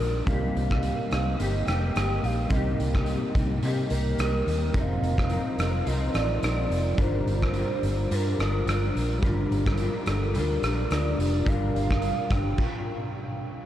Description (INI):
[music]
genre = indie pop, bedroom pop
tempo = 107 BPM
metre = 4/4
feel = swing 55% on 16ths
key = C minor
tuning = A4 = 440 Hz
[part]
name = warbly nostalgic lead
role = melody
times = 0.0-12.9 s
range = A4 to G5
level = -33 LUFS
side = right 1 dB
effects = tremolo, wide subtle chorus, analog delay
[part]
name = electric guitar through a small old amp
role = accompaniment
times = 0.0-13.1 s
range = C3 to Bb4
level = -31 LUFS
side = left 2 dB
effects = analog chorus, warbly pitch drift
[part]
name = tine electric piano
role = accompaniment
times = 0.0-12.6 s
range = F3 to Bb4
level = -35 LUFS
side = right 3 dB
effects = medium stereo tremolo
[part]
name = vintage muted fingered electric bass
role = bass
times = 0.0-12.5 s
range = F1 to C3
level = -27 LUFS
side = equal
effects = none
[part]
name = raw garage drum kit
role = drums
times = 0.3-12.7 s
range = crash cymbal, hi-hat, kick drum, rim click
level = -29 LUFS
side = equal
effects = none
[sound]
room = moderate huge ambient reverb, RT60 6.2 s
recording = dreamy mix soaked in reverb, cassette tape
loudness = -23 LUFS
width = side -12 dB against mid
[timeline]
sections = 0.0-13.7 A section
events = stop 12.6-13.7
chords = 0.3 Cm7; 4.8 F7sus4; 7.0 Gm7